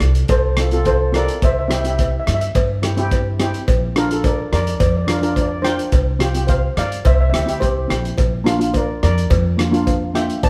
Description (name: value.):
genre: calypso.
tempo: 107 BPM.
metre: 4/4.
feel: straight.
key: unclear.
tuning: A4 = 439 Hz.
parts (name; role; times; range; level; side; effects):
steel pan; melody; 0.0-10.5 s; G4 to A5; -25 LUFS; equal; none.
steel pan; accompaniment; 0.0-10.4 s; Bb3 to Bb4; -24 LUFS; equal; none.
upright bass; bass; 0.0-10.5 s; G1 to G2; -22 LUFS; equal; none.
loose indie drum kit; drums; 0.0-10.5 s; hi-hat, kick drum, rim click; -23 LUFS; equal; none.
cowbell; percussion; 0.3-10.5 s; none; -28 LUFS; equal; none.
room: moderate stone room reverb, RT60 1.3 s.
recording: band playing live in one room, faint mains hum.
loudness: -18 LUFS.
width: mono.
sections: 0.0-10.5 A section.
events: none.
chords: 0.0 F; 1.4 C; 3.7 Bb; 5.9 Csus4; 7.1 C; 8.2 Bb.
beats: 0.30 0.86 | 1.43 1.99 2.55 3.11 | 3.68 4.24 4.80 5.36 | 5.93 6.49 7.05 7.62 | 8.18 8.74 9.31 9.87 | 10.44.